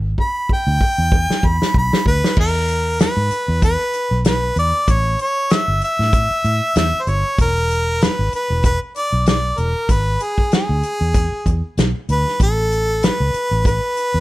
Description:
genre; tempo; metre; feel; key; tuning
straight-eighth soul blues; 96 BPM; 4/4; swing 56% on 16ths; E mixolydian; A4 = 437 Hz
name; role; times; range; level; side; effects
vintage muted fingered electric bass; bass; 0.0-14.2 s; E1 to A2; -19 LUFS; equal; none
clear harmonica; melody; 0.2-14.2 s; G#4 to B5; -19 LUFS; equal; slapback echo
warm soul drum kit; drums; 0.2-14.1 s; crash cymbal, hi-hat, kick drum, snare drum; -18 LUFS; equal; none
room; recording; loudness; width
small room ambience; none; -15 LUFS; side -17 dB against mid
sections
0.0-2.4 A section; 2.4-14.2 B section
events
drum fill 0.0-2.4; harmonica solo 0.0-2.4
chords
0.0 E7(no3); 2.4 E5; 4.9 A5; 7.4 E; 12.4 N.C.

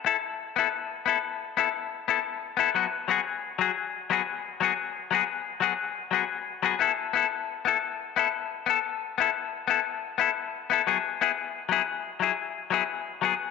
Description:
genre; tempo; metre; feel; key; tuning
highlife; 118 BPM (dotted quarters); 12/8; straight; unclear; A4 = 440 Hz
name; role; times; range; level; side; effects
clean electric guitar; solo; 0.0-13.3 s; F#3 to A4; -25 LUFS; left 10 dB; none
room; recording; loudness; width
moderate spring reverb, RT60 2.3 s; nothing above 7.9 kHz; -25 LUFS; side -4 dB against mid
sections
0.0-13.5 A section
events
none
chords
0.0 Asus2; 2.8 F#sus24; 6.8 Asus2; 10.9 Eadd9

